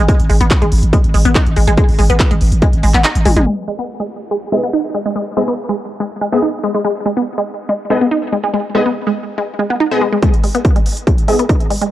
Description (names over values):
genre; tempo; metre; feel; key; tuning
driving peak-time techno; 142 BPM; 4/4; straight; G# minor; A4 = 440 Hz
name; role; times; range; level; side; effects
resonant blip pluck; riff; 0.0-11.9 s; G#3 to D#4; -17 LUFS; equal; phaser, sidechain pumping, tape echo
growling 808-style bass; bass; 0.0-3.5 s; G#1; -13 LUFS; equal; sidechain pumping, low-pass filter
electronic kick drum; drums; 0.1-2.7, 10.2-11.6 s; none; -13 LUFS; equal; none
techno drum kit; drums; 0.1-3.4, 10.2-11.9 s; handclaps, hi-hat, toms; -21 LUFS; equal; sidechain pumping on hats, sidechain pumping on toms
downlifter; sound effects; 3.5-6.8 s; none; -36 LUFS; right 1 dB; none
rave stab; stabs; 4.5-11.4 s; B3 to D#5; -20 LUFS; left 2 dB; chorus, built-in reverb, sidechain pumping, tape echo
room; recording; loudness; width
little or no reverb; dry, gritty hardware recording, cassette tape, low-pass filter; -12 LUFS; side -14 dB against mid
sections
0.0-3.5 A section; 3.5-10.2 B section; 10.2-11.9 C section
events
kick drops out 3.0-3.5; band accent 3.0; drum fill 3.3; filter sweep on synth stab 3.5-10.2, 10.2-11.9; filter sweep 3.5-10.2; build-up 10.2-11.9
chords
0.0 N.C.; 3.5 G#m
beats
| 0.09 0.51 0.93 1.35 | 1.77 2.20 2.62 3.04 | 3.47 3.89 4.31 4.73 | 5.16 5.58 6.00 6.42 | 6.85 7.27 7.69 8.11 | 8.54 8.96 9.38 9.80 | 10.23 10.65 11.07 11.49